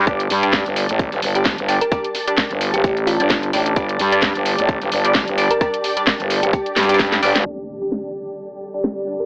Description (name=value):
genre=bass house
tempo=130 BPM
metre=4/4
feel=swing 55% on 16ths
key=unclear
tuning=A4 = 440 Hz
part: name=growling FM bass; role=bass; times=0.0-7.4 s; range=G1 to G2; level=-19 LUFS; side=equal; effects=tube saturation, sidechain pumping
part: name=granular cloud pad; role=texture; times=0.2-9.3 s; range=G4 to A5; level=-25 LUFS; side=equal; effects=built-in reverb, sidechain pumping
part: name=band-passed chord stab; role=stabs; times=0.1-9.2 s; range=G3 to D5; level=-23 LUFS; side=equal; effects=phaser, lush chorus, sidechain pumping, digital delay
part: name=breakbeat sampler-style drum kit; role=drums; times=0.1-7.3 s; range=hi-hat, snare drum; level=-30 LUFS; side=equal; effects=none
part: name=electronic kick drum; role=drums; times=0.1-7.1 s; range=none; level=-20 LUFS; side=equal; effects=none
part: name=garage drum kit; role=drums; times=0.2-9.3 s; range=hi-hat, snare drum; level=-21 LUFS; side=equal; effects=none
part: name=thumb-piano-like synth pluck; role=melody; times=1.8-9.3 s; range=D4 to Bb4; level=-23 LUFS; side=equal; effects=chorus, digital delay
part: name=muted studio string section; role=sustained chords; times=7.5-9.3 s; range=D3 to D5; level=-36 LUFS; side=equal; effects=sidechain pumping
part: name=impact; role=sound effects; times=7.5-9.3 s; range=none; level=-42 LUFS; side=equal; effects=none
room=light reverb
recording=low-pass filter, AM radio sound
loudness=-16 LUFS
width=side -30 dB against mid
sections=0.0-7.5 A section; 7.5-9.3 B section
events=fade-in on ambient pad 0.0-7.5; drum fill 6.8-7.5; band accent 7.3; impact 7.5-9.3; filter sweep 7.5-9.3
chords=0.0 G5